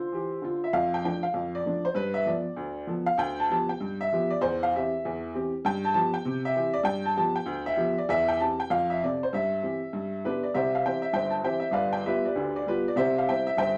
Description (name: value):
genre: jazz, stride piano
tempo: 196 BPM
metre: 4/4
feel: swing 64% on 8ths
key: C major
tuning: A4 = 441 Hz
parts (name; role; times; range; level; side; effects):
- clear upright piano; solo; 0.0-13.8 s; G1 to C6; -28 LUFS; equal; none
room: wet studio reverb, RT60 0.6 s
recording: none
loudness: -28 LUFS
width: mono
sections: 0.7-10.5 A section; 10.5-13.8 B section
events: none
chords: 0.0 C; 0.7 Dm/F; 2.0 G9; 4.4 C/E; 5.6 G7; 6.2 C; 6.9 G7; 7.5 G7/D; 8.1 C/E; 8.7 F; 9.3 C/G; 9.9 G; 10.5 C; 11.7 G7; 13.0 C